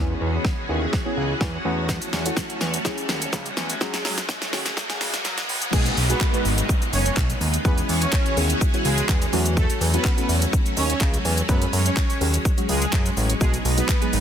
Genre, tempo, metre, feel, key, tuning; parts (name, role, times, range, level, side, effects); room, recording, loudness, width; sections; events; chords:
dance-pop; 125 BPM; 4/4; straight; B mixolydian; A4 = 440 Hz
deep mellow chord stab; accompaniment; 0.0-14.2 s; F#3 to B4; -30 LUFS; equal; chorus, sidechain pumping
string machine, full ensemble; sustained chords; 0.0-14.2 s; E3 to G#4; -28 LUFS; equal; ensemble chorus, sidechain pumping
fat analog bass; bass; 0.0-14.2 s; F#1 to F#2; -24 LUFS; equal; sidechain pumping
riser and downlifter; sound effects; 1.6-9.6 s; -33 LUFS; equal
pop drum kit; drums; 0.4-14.2 s; crash cymbal, handclaps, hi-hat, kick drum, shaker, snare drum; -23 LUFS; equal; soft clipping on snare
soft supersaw; melody; 5.7-14.1 s; G#3 to C#5; -28 LUFS; right 2 dB; sidechain pumping, tape echo
light reverb; dense, heavily limited modern master, high-pass filter; -20 LUFS; side -9 dB against mid
0.0-5.7 A section; 5.7-14.2 B section
build-up 0.0-5.7; drum fill 0.0-5.7; filter sweep 0.0-5.7; riser 1.6-5.7; drop 5.7-14.2
0.0 E6; 1.6 A6/E; 3.8 F#sus2; 5.7 B6; 7.7 E6; 9.3 A6/E; 11.5 F#sus2; 13.4 B6